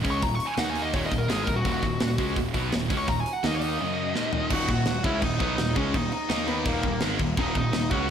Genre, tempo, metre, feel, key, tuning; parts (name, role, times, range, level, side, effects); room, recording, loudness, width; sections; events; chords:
heavy metal; 168 BPM; 4/4; straight; Eb minor; A4 = 440 Hz
crunchy overdriven guitar; riff; 0.0-8.1 s; Eb2 to Eb4; -31 LUFS; equal
heavy high-gain guitar; riff; 0.0-8.1 s; Eb2 to Eb4; -30 LUFS; right 1 dB; distortion, slapback echo
fuzz picked electric bass; bass; 0.0-8.1 s; Eb1 to Eb2; -32 LUFS; equal; overdrive
tight metal drum kit; drums; 0.0-8.0 s; crash cymbal, hi-hat, kick drum, snare drum, toms; -30 LUFS; equal
high-gain lead guitar; melody; 0.1-8.1 s; Bb3 to Db6; -29 LUFS; equal; distortion, slapback echo, tape echo
moderate lush hall reverb, RT60 1.7 s; big arena sound; -23 LUFS; side -8 dB against mid
0.0-4.5 A section; 4.5-8.1 B section
lead electric guitar solo 0.0-4.5; drum fill 4.2-4.5
0.0 Ebm; 3.8 Gb5; 4.2 Eb5